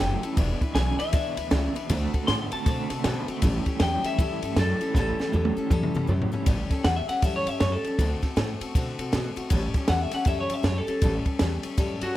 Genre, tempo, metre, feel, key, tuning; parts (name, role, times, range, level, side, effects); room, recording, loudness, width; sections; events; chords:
rockabilly; 158 BPM; 4/4; swing 63% on 8ths; A mixolydian; A4 = 439 Hz
electric guitar through a small old amp; melody; 0.0-12.2 s; F#4 to C6; -30 LUFS; left 2 dB; tape echo
picked steel-string acoustic guitar; accompaniment; 0.0-12.2 s; A2 to B4; -32 LUFS; left 3 dB
electric guitar through a small old amp; riff; 0.0-6.5 s; E2 to B3; -33 LUFS; right 4 dB; tremolo
upright bass; bass; 0.0-12.1 s; E1 to C3; -28 LUFS; equal
compact cocktail drum kit; drums; 0.2-12.1 s; kick drum, ride cymbal, snare drum, toms; -26 LUFS; equal
light reverb, studio reverb; -23 LUFS; side -14 dB against mid
0.0-6.5 A section; 6.5-12.2 B section
drum fill 4.9-6.5; clean electric guitar solo 6.5-12.2
0.4 E7; 1.9 D7; 3.4 A7; 8.0 D7; 9.5 A7